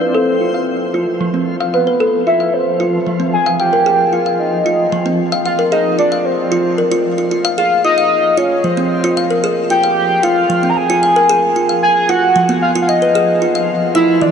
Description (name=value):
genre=IDM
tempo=113 BPM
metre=4/4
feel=straight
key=unclear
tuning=A4 = 439 Hz
part: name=warbly nostalgic lead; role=melody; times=0.0-14.3 s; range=B4 to Bb5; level=-14 LUFS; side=equal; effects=lush chorus, tape echo
part: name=kalimba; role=arpeggios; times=0.0-14.3 s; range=E3 to F5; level=-16 LUFS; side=equal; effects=low-pass filter, tape echo
part: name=backwards swelling texture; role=texture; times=0.0-14.3 s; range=F3 to E5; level=-24 LUFS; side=left 1 dB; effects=built-in reverb
room=wet huge ambient reverb, RT60 6.9 s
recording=dark, warm production, nothing above 11.0 kHz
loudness=-12 LUFS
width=side -7 dB against mid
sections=0.0-14.3 A section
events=filter sweep on kalimba 0.0-14.3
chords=0.0 Fmaj7(no3); 3.3 Fm9; 11.8 B (rootless)